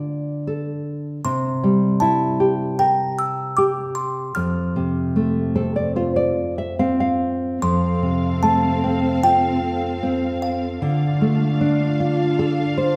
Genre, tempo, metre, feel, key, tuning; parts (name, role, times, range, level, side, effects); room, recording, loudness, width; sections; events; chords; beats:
children's music, lullaby; 76 BPM; 4/4; rubato; F major; A4 = 440 Hz
nylon-string guitar; accompaniment; 0.0-13.0 s; F2 to F5; -22 LUFS; equal
music box; melody; 1.2-12.0 s; F5 to F6; -25 LUFS; equal
dark symphonic string section; sustained chords; 7.6-13.0 s; C4 to F5; -27 LUFS; equal
wet recital hall reverb, RT60 1.7 s; recorded in a church or concert hall; -21 LUFS; mono
0.0-7.6 A section; 7.6-13.0 A section
nylon-string guitar fill 5.2-7.6, 12.4-13.0
0.0 Dm; 1.2 C7; 4.4 F; 10.8 Dm
0.46 | 1.24 2.01 2.79 3.58 | 4.36 5.15 5.96 6.79 | 7.62 8.43 9.23 10.02 | 10.81 11.60 12.38